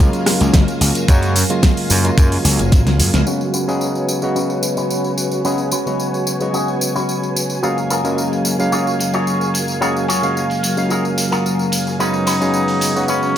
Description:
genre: nu-disco, nu disco.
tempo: 110 BPM.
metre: 4/4.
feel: straight.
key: F# major.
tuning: A4 = 443 Hz.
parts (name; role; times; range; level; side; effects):
barky tine electric piano; accompaniment; 0.0-13.4 s; C#3 to E#5; -20 LUFS; equal; overdrive, vintage 12-bit sampler grit, sidechain pumping, low-pass filter, dub echo.
string machine, full ensemble; sustained chords; 0.0-13.4 s; F#3 to G#5; -23 LUFS; equal; ensemble chorus, sidechain pumping.
gritty slap bass; bass; 0.0-3.2 s; F#1 to F#2; -16 LUFS; equal; overdrive.
pop drum kit; drums; 0.1-12.9 s; crash cymbal, hi-hat, rim click, snare drum; -22 LUFS; equal; overdrive, low-pass filter on hats, low-pass filter on snare, low-pass filter on cymbals, low-pass filter on room.
tambourine; percussion; 0.1-13.3 s; none; -25 LUFS; equal; none.
electronic kick drum; drums; 0.5-2.8 s; none; -12 LUFS; equal; overdrive.
electric guitar with an envelope filter; riff; 3.3-13.4 s; C#4 to C#5; -23 LUFS; left 2 dB; wide subtle chorus, low-pass filter, dub echo.
breathy tenor saxophone; melody; 12.0-13.4 s; C#4 to D#4; -20 LUFS; equal; none.
room: moderate plate reverb, RT60 1.7 s, digital ambience.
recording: none.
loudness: -14 LUFS.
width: side -10 dB against mid.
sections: 0.0-3.3 A section; 3.3-13.4 B section.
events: drum fill 2.7-3.3; band accent 3.1; filter sweep on drum 3.3-13.4; filter sweep on clean electric guitar 3.3-13.4; filter sweep on tine electric piano 3.3-13.4; filter sweep on string machine 3.3-13.4.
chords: 0.0 F#maj9; 3.3 C#7sus4; 7.6 F#maj9; 12.0 C#7sus4.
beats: 0.00 0.54 | 1.09 1.63 2.18 2.72 | 3.27 3.81 4.36 4.91 | 5.45 6.00 6.54 7.09 | 7.63 8.18 8.72 9.27 | 9.81 10.36 10.91 11.45 | 12.00 12.54 13.09.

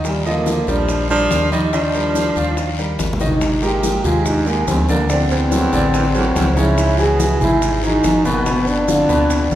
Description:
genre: Afro-Cuban jazz.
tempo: 143 BPM.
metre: 4/4.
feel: straight.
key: Eb major.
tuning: A4 = 440 Hz.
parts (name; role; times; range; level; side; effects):
warm concert grand piano; accompaniment; 0.0-9.6 s; Cb3 to Eb5; -21 LUFS; equal; none.
deep dub fingered electric bass; bass; 0.0-9.6 s; G1 to Eb2; -21 LUFS; equal; none.
bongos; percussion; 0.0-9.6 s; none; -28 LUFS; left 4 dB; none.
congas; percussion; 0.0-9.6 s; none; -26 LUFS; left 1 dB; none.
guiro; percussion; 0.0-9.6 s; none; -32 LUFS; left 5 dB; none.
maracas; percussion; 0.0-9.6 s; none; -34 LUFS; right 5 dB; none.
breathy trombone; melody; 0.1-9.6 s; G3 to Ab4; -19 LUFS; equal; none.
bright baritone saxophone; second line; 0.1-9.6 s; Db2 to G3; -24 LUFS; right 4 dB; none.
room: wet recital hall reverb, RT60 1.6 s.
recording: recorded in a church or concert hall.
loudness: -14 LUFS.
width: side -12 dB against mid.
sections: 0.0-3.4 A section; 3.4-9.6 B section.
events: drum fill 3.0-3.4.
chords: 0.0 Ebmaj9; 3.4 Absus2; 5.1 D9; 6.8 Dbm11; 8.5 G7.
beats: | 0.05 0.47 0.89 1.31 | 1.73 2.15 2.57 3.00 | 3.42 3.84 4.26 4.68 | 5.10 5.52 5.94 6.36 | 6.78 7.20 7.62 8.04 | 8.46 8.88 9.30.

